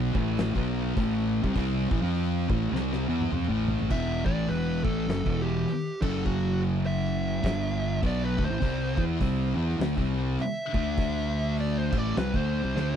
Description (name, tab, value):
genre	stoner and doom metal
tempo	102 BPM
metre	4/4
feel	swing 60% on 8ths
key	E minor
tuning	A4 = 440 Hz
part	thick fuzz guitar	riff	0.0-13.0 s	E2 to F4	-30 LUFS	left 11 dB	distortion
part	thick fuzz guitar	riff	0.0-13.0 s	E2 to F4	-31 LUFS	right 12 dB	distortion
part	fuzz fingered electric bass	bass	0.0-13.0 s	E1 to F2	-31 LUFS	equal	overdrive
part	oversized low-tuned drum kit	drums	0.1-12.9 s	crash cymbal, hi-hat, kick drum, snare drum, toms	-32 LUFS	equal	none
part	fuzz lead guitar	melody	3.9-13.0 s	F#4 to E5	-34 LUFS	right 2 dB	distortion, tape echo
room	little or no reverb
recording	dry, close 1970s-style studio recording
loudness	-25 LUFS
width	side -8 dB against mid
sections	0.0-3.9 A section; 3.9-13.0 B section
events	drum fill 2.7-3.9, 12.8; lead electric guitar solo 3.9-13.0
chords	0.0 A5; 3.9 Em; 6.0 F#5; 7.4 G5; 8.0 E5; 8.6 C5; 10.7 D5; 11.9 C5